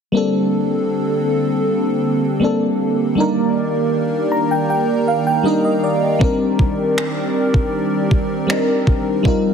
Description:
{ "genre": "contemporary R&B", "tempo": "79 BPM", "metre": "4/4", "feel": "straight", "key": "Bb major", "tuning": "A4 = 440 Hz", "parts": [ { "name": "FM electric piano with soft pad layer", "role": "accompaniment", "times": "0.1-9.5 s", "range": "G3 to Bb5", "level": "-17 LUFS", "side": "left 1 dB", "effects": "chorus, phaser" }, { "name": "hollow soft pad", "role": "sustained chords", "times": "0.1-9.5 s", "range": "D3 to D5", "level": "-21 LUFS", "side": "right 2 dB", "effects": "chorus, sidechain pumping" }, { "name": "gated 80s digital drum machine", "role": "drums", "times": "6.2-9.4 s", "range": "finger snaps, kick drum", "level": "-18 LUFS", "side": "equal", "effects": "overdrive" } ], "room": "moderate lush hall reverb, RT60 2.1 s", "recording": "heavily compressed radio sound", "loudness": "-15 LUFS", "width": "side -7 dB against mid", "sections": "0.1-9.5 A section", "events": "FM electric piano fill 3.9-6.2", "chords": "0.1 Bbmaj13; 3.2 Ebmaj7; 6.2 Cm9" }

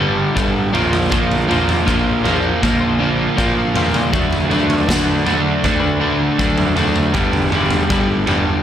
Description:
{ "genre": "quiet-loud alternative rock", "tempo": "80 BPM", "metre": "4/4", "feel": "straight", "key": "unclear", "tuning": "A4 = 440 Hz", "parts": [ { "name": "twelve-string electric guitar", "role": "arpeggios", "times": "0.0-8.6 s", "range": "D3 to C5", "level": "-23 LUFS", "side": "left 4 dB", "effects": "spring reverb, slapback echo, plate reverb" }, { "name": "crunchy overdriven guitar", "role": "riff", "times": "0.0-8.6 s", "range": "G2 to D4", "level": "-17 LUFS", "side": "right 1 dB", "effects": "none" }, { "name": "fuzz picked electric bass", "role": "bass", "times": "0.0-8.5 s", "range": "G1 to D3", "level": "-23 LUFS", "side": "equal", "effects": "overdrive" }, { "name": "raw garage drum kit", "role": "drums", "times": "0.4-8.5 s", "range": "kick drum, snare drum, toms", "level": "-20 LUFS", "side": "equal", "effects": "none" } ], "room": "moderate studio reverb, RT60 0.8 s", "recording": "none", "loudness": "-14 LUFS", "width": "side -10 dB against mid", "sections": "0.0-8.6 A section", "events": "none", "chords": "0.0 Gadd9; 0.7 Bbadd9; 4.1 D6; 7.2 Gadd9" }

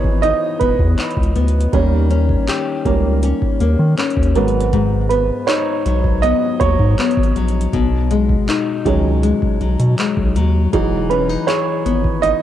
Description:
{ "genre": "contemporary R&B", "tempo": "80 BPM", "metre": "4/4", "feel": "straight", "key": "B major", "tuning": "A4 = 440 Hz", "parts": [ { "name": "dark baby grand piano", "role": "accompaniment", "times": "0.0-12.4 s", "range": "D#3 to D#5", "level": "-20 LUFS", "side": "right 7 dB", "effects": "cassette tape" }, { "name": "nylon-string guitar", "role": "arpeggios", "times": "0.0-12.4 s", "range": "G#2 to G#4", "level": "-20 LUFS", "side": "left 7 dB", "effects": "cassette tape" }, { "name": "round analog bass", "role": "bass", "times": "0.0-12.3 s", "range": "E1 to D#3", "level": "-17 LUFS", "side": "equal", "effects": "none" }, { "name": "booming analog drum machine", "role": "drums", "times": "0.0-12.4 s", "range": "handclaps, hi-hat, kick drum", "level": "-20 LUFS", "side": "equal", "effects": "overdrive, cassette tape" } ], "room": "light reverb", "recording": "home recording on cassette, lossy compression artefacts", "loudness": "-14 LUFS", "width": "side -11 dB against mid", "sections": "0.0-12.4 A section", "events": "grand piano solo 0.0-12.4", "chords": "0.0 Emaj7; 1.7 D#7; 4.4 G#m7; 7.7 B6; 10.7 Emaj7" }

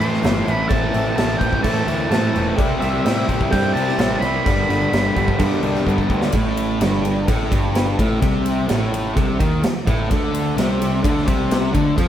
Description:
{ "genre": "classic rock", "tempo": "128 BPM", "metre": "4/4", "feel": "straight", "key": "A minor", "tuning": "A4 = 440 Hz", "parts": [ { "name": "octave-fuzz lead guitar", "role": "melody", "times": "0.0-6.1 s", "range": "E5 to C6", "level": "-25 LUFS", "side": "right 2 dB", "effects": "distortion" }, { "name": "picked steel-string acoustic guitar", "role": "accompaniment", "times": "0.0-6.4 s", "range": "G2 to A4", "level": "-30 LUFS", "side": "left 2 dB", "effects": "none" }, { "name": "distorted electric guitar", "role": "riff", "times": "0.0-12.1 s", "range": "G2 to C4", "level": "-23 LUFS", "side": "equal", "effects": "distortion" }, { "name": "thick fuzz guitar", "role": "riff", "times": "0.0-12.1 s", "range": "G2 to E4", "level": "-24 LUFS", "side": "equal", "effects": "distortion" }, { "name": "fuzz picked electric bass", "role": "bass", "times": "0.0-12.1 s", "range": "E1 to C3", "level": "-23 LUFS", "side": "equal", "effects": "overdrive" }, { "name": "big rock drum kit", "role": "drums", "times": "0.0-12.1 s", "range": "crash cymbal, kick drum, ride cymbal, snare drum", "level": "-22 LUFS", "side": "equal", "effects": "none" }, { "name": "cowbell", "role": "percussion", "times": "0.2-12.1 s", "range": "none", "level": "-34 LUFS", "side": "right 7 dB", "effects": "none" } ], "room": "light reverb", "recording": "band playing live in one room", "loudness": "-16 LUFS", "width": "side -10 dB against mid", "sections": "0.0-6.3 A section; 6.3-12.1 B section", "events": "drum fill 5.9-6.3", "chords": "0.0 Am; 2.6 C; 4.5 G; 6.3 Am; 10.1 D5" }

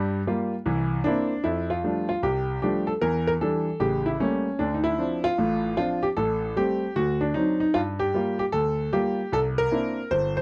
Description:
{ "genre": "solo jazz", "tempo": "152 BPM", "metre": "4/4", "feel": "swing 64% on 8ths", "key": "F major", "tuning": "A4 = 438 Hz", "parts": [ { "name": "clear grand piano", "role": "solo", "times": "0.0-10.4 s", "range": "G1 to C5", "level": "-25 LUFS", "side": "equal", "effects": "none" } ], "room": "small room ambience", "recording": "dry, close 1970s-style studio recording", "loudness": "-25 LUFS", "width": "mono", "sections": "0.0-1.4 A section; 1.4-10.4 B section", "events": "grand piano solo 0.0-1.4", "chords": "0.0 Gm7; 0.7 C7; 1.4 F69; 3.0 Em7b5; 3.8 A7b9; 4.6 Dm7; 6.2 Am7; 7.0 D7b9; 7.7 Gm7; 9.3 C9" }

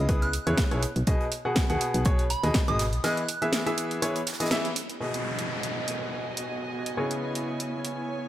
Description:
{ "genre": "piano house", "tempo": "122 BPM", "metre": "4/4", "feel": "swing 54% on 16ths", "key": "B major", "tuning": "A4 = 440 Hz", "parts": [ { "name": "soft synth bell", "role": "melody", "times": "0.0-3.4 s", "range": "B5 to F#6", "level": "-34 LUFS", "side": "right 2 dB", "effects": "chorus, tape echo" }, { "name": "clear grand piano", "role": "riff", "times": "0.0-8.3 s", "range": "B2 to F#5", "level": "-30 LUFS", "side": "left 1 dB", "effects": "sidechain pumping, tape echo" }, { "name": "solid FM bass", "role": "bass", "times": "0.0-3.0 s", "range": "G#1 to E2", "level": "-27 LUFS", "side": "equal", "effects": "tube saturation, sidechain pumping" }, { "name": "electronic kick drum", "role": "drums", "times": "0.1-2.7 s", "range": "none", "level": "-25 LUFS", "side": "equal", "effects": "overdrive" }, { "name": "gated 80s drum kit", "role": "drums", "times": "0.1-4.9 s", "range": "hi-hat, snare drum", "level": "-38 LUFS", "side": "right 2 dB", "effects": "none" }, { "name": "house drum kit", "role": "drums", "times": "0.1-7.9 s", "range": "hi-hat, snare drum", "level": "-31 LUFS", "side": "right 1 dB", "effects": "none" }, { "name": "downlifter", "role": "sound effects", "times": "5.0-8.3 s", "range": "none", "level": "-35 LUFS", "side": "equal", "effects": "none" }, { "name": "warm chamber string section", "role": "texture", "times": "5.0-8.3 s", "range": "B3 to G#5", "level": "-34 LUFS", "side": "right 2 dB", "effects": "sidechain pumping" } ], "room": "light reverb, small room ambience", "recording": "none", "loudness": "-25 LUFS", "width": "side -13 dB against mid", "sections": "0.0-5.0 A section; 5.0-8.3 B section", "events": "break 3.0-5.0; band accent 4.5", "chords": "0.0 C#m7; 0.8 B6; 3.0 Emaj7; 5.0 B6; 7.0 C#m7" }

